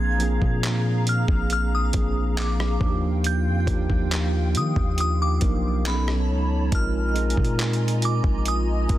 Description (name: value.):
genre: contemporary R&B.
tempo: 69 BPM.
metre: 4/4.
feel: straight.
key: unclear.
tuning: A4 = 441 Hz.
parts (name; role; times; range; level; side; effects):
glassy synth bell; melody; 0.0-9.0 s; B5 to Ab6; -30 LUFS; equal; chorus, phaser, digital delay.
tine electric piano; accompaniment; 0.0-9.0 s; F3 to Bb4; -27 LUFS; right 2 dB; medium stereo tremolo.
hollow soft pad; sustained chords; 0.0-9.0 s; D#4 to B5; -34 LUFS; left 1 dB; ensemble chorus.
long sustained 808-style bass; bass; 0.0-9.0 s; Bb1 to Eb3; -24 LUFS; equal; none.
dusty soul sampler-style drum kit; drums; 0.2-9.0 s; handclaps, hi-hat, kick drum, rim click; -25 LUFS; equal; overdrive.
room: digital ambience.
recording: dense, heavily limited modern master.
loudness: -20 LUFS.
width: side -14 dB against mid.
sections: 0.0-9.0 A section.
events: none.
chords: 0.0 Bb7; 2.8 Ebmaj9; 5.9 B9; 6.7 Bb7sus4.